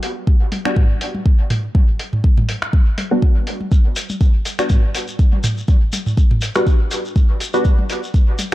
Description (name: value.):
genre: dub techno.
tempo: 122 BPM.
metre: 4/4.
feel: swing 55% on 16ths.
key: unclear.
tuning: A4 = 440 Hz.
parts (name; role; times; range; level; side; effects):
lo-fi sampler-style drum kit; drums; 0.0-8.5 s; finger snaps, hi-hat; -26 LUFS; equal; dub echo.
electronic kick drum; drums; 0.3-8.2 s; none; -13 LUFS; equal; none.
electronic toms; percussion; 0.5-8.5 s; none; -25 LUFS; equal; sidechain pumping on toms, dub echo.
filtered dub chord stab; stabs; 0.7-8.5 s; G3 to F#4; -22 LUFS; equal; chorus, phaser, sidechain pumping, dub echo.
shekere; percussion; 3.7-8.5 s; none; -29 LUFS; left 3 dB; none.
room: digital ambience.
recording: dark, warm production.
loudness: -14 LUFS.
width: side -16 dB against mid.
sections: 0.0-8.5 A section.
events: none.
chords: 0.0 Gmaj7.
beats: 0.27 0.77 1.26 | 1.75 2.24 2.73 3.22 | 3.72 4.21 4.70 5.19 | 5.68 6.17 6.67 7.16 | 7.65 8.14.